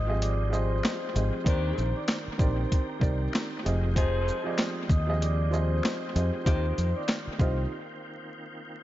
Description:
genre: hip hop, boom-bap hip-hop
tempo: 96 BPM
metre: 4/4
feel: swing 58% on 16ths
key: F dorian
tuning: A4 = 440 Hz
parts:
  - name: vibraphone with soft mallets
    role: melody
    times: 0.0-7.6 s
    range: C5 to Eb6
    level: -35 LUFS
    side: left 2 dB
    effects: high-pass filter, low-pass filter, dub echo
  - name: tonewheel organ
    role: sustained chords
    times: 0.0-8.8 s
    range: Eb3 to G5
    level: -41 LUFS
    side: left 1 dB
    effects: chorus vibrato, fast rotary speaker, high-pass filter, low-pass filter
  - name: fingered electric bass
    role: bass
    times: 0.0-7.6 s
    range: F1 to F2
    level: -27 LUFS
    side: equal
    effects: none
  - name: dark upright piano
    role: accompaniment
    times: 0.1-7.7 s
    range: Eb3 to Eb5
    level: -33 LUFS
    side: right 3 dB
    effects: high-pass filter, low-pass filter
  - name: boom bap sampler-style drum kit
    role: drums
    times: 0.2-7.6 s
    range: hi-hat, kick drum, shaker, snare drum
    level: -28 LUFS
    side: equal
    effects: dub echo
  - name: finger snaps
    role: percussion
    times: 0.8-7.2 s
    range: none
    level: -43 LUFS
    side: left 5 dB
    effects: none
  - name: clear saxophone section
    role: stabs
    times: 1.5-6.7 s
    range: C3 to Ab4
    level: -41 LUFS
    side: left 3 dB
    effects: high-pass filter, low-pass filter, dub echo
room: small room ambience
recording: echo-heavy mix, vinyl crackle, nothing above 7.5 kHz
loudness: -25 LUFS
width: side -14 dB against mid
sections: 0.0-8.8 A section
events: break 7.7-8.8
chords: 0.0 Fm7; 1.5 Cm9; 3.6 Fm7; 6.5 Eb69

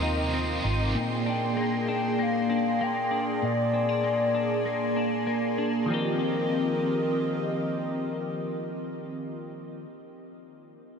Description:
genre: dream pop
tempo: 97 BPM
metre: 4/4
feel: straight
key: Eb major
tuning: A4 = 440 Hz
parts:
  - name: hollow clarinet-like synth lead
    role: melody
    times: 0.0-9.1 s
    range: Bb4 to G5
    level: -31 LUFS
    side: left 1 dB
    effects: chorus, ping-pong delay
  - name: biting overdriven guitar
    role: accompaniment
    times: 0.0-1.0 s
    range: Eb3 to G4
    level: -38 LUFS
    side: right 2 dB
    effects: tremolo, analog chorus
  - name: phased analog pad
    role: sustained chords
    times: 0.0-9.1 s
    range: Bb3 to C6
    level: -29 LUFS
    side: equal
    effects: phaser, chorus
  - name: semi-hollow electric guitar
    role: arpeggios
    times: 0.0-9.9 s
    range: Bb2 to G4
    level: -31 LUFS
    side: left 2 dB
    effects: analog chorus, ping-pong delay
  - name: vintage muted fingered electric bass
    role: bass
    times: 0.0-0.9 s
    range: Ab1 to Eb2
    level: -28 LUFS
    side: right 1 dB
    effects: none
  - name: shimmering bell with halo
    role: texture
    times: 0.0-1.1 s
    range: Eb5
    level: -43 LUFS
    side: right 1 dB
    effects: ensemble chorus, ping-pong delay
room: wet huge ambient reverb, RT60 7.4 s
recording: dreamy mix soaked in reverb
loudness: -25 LUFS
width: side -6 dB against mid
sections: 0.0-5.9 A section; 5.9-8.4 B section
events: none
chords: 0.0 Eb69; 0.9 Bb13; 5.9 Eb69

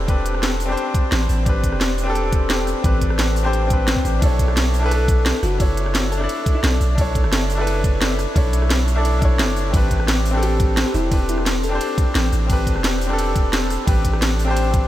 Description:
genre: liquid drum and bass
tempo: 174 BPM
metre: 4/4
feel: straight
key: unclear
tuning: A4 = 440 Hz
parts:
  - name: bright grand piano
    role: accompaniment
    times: 0.0-14.9 s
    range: C4 to D5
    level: -23 LUFS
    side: left 1 dB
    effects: tape echo
  - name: long sustained 808-style bass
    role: bass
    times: 0.0-14.9 s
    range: E1 to B1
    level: -20 LUFS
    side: equal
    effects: none
  - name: drum and bass drum kit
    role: drums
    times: 0.1-14.8 s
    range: hi-hat, ride cymbal, rim click, snare drum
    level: -24 LUFS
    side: equal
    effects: none
  - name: electronic kick drum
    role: drums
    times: 0.1-14.8 s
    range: none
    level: -19 LUFS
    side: equal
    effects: none
  - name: bell-like FM electric piano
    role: melody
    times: 4.9-6.9, 10.4-12.1 s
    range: E4 to A4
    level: -30 LUFS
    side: left 1 dB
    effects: chorus, tape echo
room: moderate huge ambient reverb, RT60 6.8 s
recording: dreamy mix soaked in reverb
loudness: -16 LUFS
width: side -14 dB against mid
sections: 0.0-14.9 A section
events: none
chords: 0.0 Am11; 4.2 Bm11; 9.7 Am11

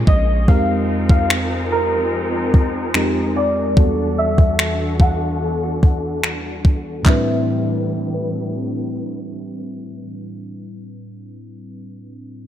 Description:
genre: contemporary R&B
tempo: 73 BPM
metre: 4/4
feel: straight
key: unclear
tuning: A4 = 436 Hz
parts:
  - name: clear baby grand piano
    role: melody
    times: 0.0-10.1 s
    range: Bb4 to F#5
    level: -23 LUFS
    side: equal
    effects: analog chorus, low-pass filter, analog delay
  - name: FM electric piano with soft pad layer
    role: accompaniment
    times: 0.0-12.5 s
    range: E2 to B4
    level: -22 LUFS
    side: equal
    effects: chorus, low-pass filter
  - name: warm studio string section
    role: sustained chords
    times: 0.0-10.1 s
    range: A2 to B4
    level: -25 LUFS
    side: left 1 dB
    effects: low-pass filter
  - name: long sustained 808-style bass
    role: bass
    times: 0.0-0.5 s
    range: Bb1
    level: -17 LUFS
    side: equal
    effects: none
  - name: crisp 8-bit digital drum machine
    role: drums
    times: 0.1-7.2 s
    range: finger snaps, handclaps, kick drum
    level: -15 LUFS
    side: equal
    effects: none
room: moderate plate reverb, RT60 2.3 s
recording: dreamy mix soaked in reverb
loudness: -16 LUFS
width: side -11 dB against mid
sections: 0.0-7.1 A section; 7.1-10.3 B section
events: filter sweep 0.0-7.1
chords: 0.5 Fm11; 3.8 Em11; 7.1 Am11

